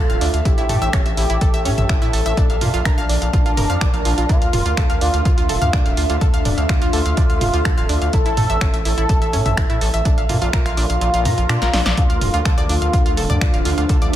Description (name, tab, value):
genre	melodic techno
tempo	125 BPM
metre	4/4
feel	straight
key	D minor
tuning	A4 = 441 Hz
part	expressive synth lead	melody	0.0-13.6 s	D4 to A4	-24 LUFS	equal	ensemble chorus, sidechain pumping, tape echo
part	analog pluck	arpeggios	0.0-14.2 s	C#4 to Bb5	-25 LUFS	right 1 dB	chorus, sidechain pumping, ping-pong delay
part	gritty driven synth bass	bass	0.0-14.2 s	D1 to Bb2	-21 LUFS	equal	sidechain pumping
part	ethereal airy pad	texture	0.0-14.2 s	D4 to Bb5	-27 LUFS	right 1 dB	ensemble chorus, built-in reverb, phaser, sidechain pumping
part	punchy analog drum machine	drums	0.1-14.2 s	finger snaps, hi-hat, snare drum, toms	-24 LUFS	right 1 dB	none
part	electronic kick drum	drums	0.5-14.0 s	none	-18 LUFS	equal	none
part	warm analog pad	sustained chords	12.0-14.2 s	D3 to A4	-28 LUFS	left 1 dB	chorus, sidechain pumping
room	digital ambience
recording	none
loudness	-15 LUFS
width	side -12 dB against mid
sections	0.0-14.2 A section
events	kick drops out 11.0-12.0; drum fill 11.6-12.0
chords	0.5 A; 2.4 Bb; 4.3 Dm; 8.1 A; 10.1 Bb; 12.0 Dm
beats	| 0.45 0.93 1.41 1.89 | 2.37 2.85 3.33 3.81 | 4.29 4.77 5.25 5.73 | 6.21 6.69 7.17 7.65 | 8.13 8.61 9.09 9.57 | 10.05 10.53 11.01 11.49 | 11.97 12.45 12.93 13.41 | 13.89